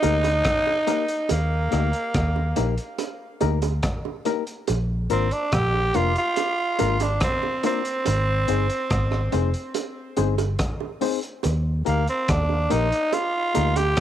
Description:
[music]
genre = roots reggae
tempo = 71 BPM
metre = 4/4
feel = straight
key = Eb major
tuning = A4 = 440 Hz
[part]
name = growling tenor saxophone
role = melody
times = 0.0-14.0 s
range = Bb3 to G4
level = -24 LUFS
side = right 1 dB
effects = tape echo
[part]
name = barky reed electric piano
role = stabs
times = 0.0-13.7 s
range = Bb3 to C5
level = -28 LUFS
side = left 13 dB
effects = overdrive
[part]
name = vintage muted fingered electric bass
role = bass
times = 0.0-13.9 s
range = F1 to Eb2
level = -23 LUFS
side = equal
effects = none
[part]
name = crunchy breakbeat drum kit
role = drums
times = 0.0-14.0 s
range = hi-hat, kick drum, rim click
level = -29 LUFS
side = equal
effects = none
[part]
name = bongos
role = percussion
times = 0.0-14.0 s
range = none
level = -30 LUFS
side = right 12 dB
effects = none
[sound]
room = light reverb, small room ambience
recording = 1960s-style stereo with parts hard left and right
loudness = -21 LUFS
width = side -11 dB against mid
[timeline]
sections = 0.0-14.0 A section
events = none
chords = 0.0 Eb; 4.7 Bb; 8.1 Ab; 11.4 Eb

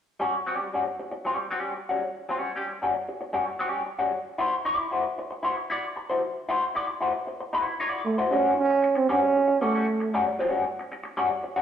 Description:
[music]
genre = funk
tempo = 115 BPM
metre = 4/4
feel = straight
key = A mixolydian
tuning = A4 = 440 Hz
[part]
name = electric guitar through a small old amp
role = accompaniment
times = 0.2-11.6 s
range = G3 to D5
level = -26 LUFS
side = left 2 dB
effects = wah
[part]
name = breathy trombone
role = melody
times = 8.1-10.1 s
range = A3 to C#4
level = -22 LUFS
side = right 4 dB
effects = none
[sound]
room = wet stone room reverb, RT60 1.3 s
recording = band playing live in one room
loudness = -24 LUFS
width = side -9 dB against mid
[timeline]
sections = 0.0-8.3 A section; 8.3-11.6 B section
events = none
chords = 0.0 F#5; 4.1 D9; 8.3 A6 (rootless)

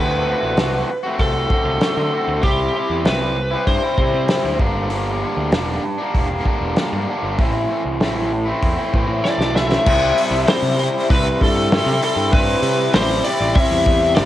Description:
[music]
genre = indie rock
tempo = 97 BPM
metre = 4/4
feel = straight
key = unclear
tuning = A4 = 444 Hz
[part]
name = lead guitar through a small cranked amp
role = melody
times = 0.0-4.6, 9.3-14.3 s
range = G4 to E5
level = -21 LUFS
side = left 1 dB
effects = overdrive, analog delay
[part]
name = raw garage guitar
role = riff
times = 0.0-14.3 s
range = G2 to F#4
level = -21 LUFS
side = left 1 dB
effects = overdrive, cassette tape
[part]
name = fuzz picked electric bass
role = bass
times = 0.0-14.3 s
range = E1 to D3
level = -24 LUFS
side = equal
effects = overdrive
[part]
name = loose indie drum kit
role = drums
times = 0.6-14.3 s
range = crash cymbal, hi-hat, kick drum, snare drum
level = -20 LUFS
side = equal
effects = none
[part]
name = mellow tonewheel organ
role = sustained chords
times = 9.9-14.3 s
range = C4 to G4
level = -30 LUFS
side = right 1 dB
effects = none
[sound]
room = light reverb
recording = home recording on cassette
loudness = -16 LUFS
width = side -13 dB against mid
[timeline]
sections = 0.0-9.9 A section; 9.9-14.3 B section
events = drum fill 9.2-9.9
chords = 0.0 D7; 2.4 C; 4.6 Gm; 7.4 Am; 9.9 C

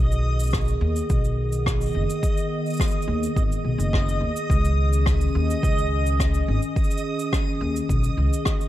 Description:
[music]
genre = folktronica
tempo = 106 BPM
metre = 4/4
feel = straight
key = unclear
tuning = A4 = 439 Hz
[part]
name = warbly tape-like pad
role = sustained chords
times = 0.0-8.7 s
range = Eb3 to Ab4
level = -28 LUFS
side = equal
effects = chorus, built-in reverb
[part]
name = upright bass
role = bass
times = 0.0-8.3 s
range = Gb1 to Eb2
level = -22 LUFS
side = equal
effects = none
[part]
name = backwards swelling texture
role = texture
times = 0.0-8.7 s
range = Eb5 to Eb6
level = -31 LUFS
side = equal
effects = built-in reverb
[part]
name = cabasa and rim click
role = drums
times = 0.1-8.7 s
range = none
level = -32 LUFS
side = left 1 dB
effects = none
[part]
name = electronic kick drum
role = drums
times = 0.5-8.6 s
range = none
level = -23 LUFS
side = equal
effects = none
[sound]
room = little or no reverb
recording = dark, warm production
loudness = -20 LUFS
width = side -14 dB against mid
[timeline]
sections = 0.0-8.7 A section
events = none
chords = 0.0 Cb6; 4.5 Dbsus2

